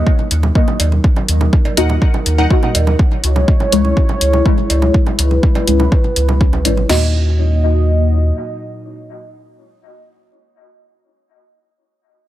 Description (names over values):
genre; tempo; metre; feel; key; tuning
dub techno; 123 BPM; 4/4; straight; Eb phrygian; A4 = 440 Hz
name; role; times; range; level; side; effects
dark analog pad; sustained chords; 0.3-10.3 s; Gb3 to Eb5; -21 LUFS; left 1 dB; chorus, phaser, sidechain pumping
deep mellow chord stab; stabs; 0.0-10.3 s; Ab3 to Eb5; -21 LUFS; left 2 dB; chorus, phaser, sidechain pumping, dub echo
soft dub sub bass; bass; 0.0-8.3 s; Ab1 to Eb2; -14 LUFS; equal; tube saturation, sidechain pumping
deep house drum kit; drums; 0.1-7.0 s; crash cymbal, kick drum, snare drum; -14 LUFS; equal; overdrive
bongos and cowbell; percussion; 0.2-6.9 s; none; -24 LUFS; right 4 dB; sidechain pumping on perc, dub echo
electronic hi-hat; drums; 0.3-6.7 s; none; -16 LUFS; left 1 dB; none
filtered dub chord stab; riff; 1.8-2.6 s; Eb4 to Gb5; -24 LUFS; left 2 dB; phaser, sidechain pumping, dub echo
room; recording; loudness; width
little or no reverb; none; -11 LUFS; side -14 dB against mid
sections
0.0-6.9 A section; 6.9-10.8 B section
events
filter sweep on sub bass 0.0-6.9; filter sweep on synth stab 0.0-6.9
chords
0.0 Ebm; 3.0 Dbm; 6.9 Ebm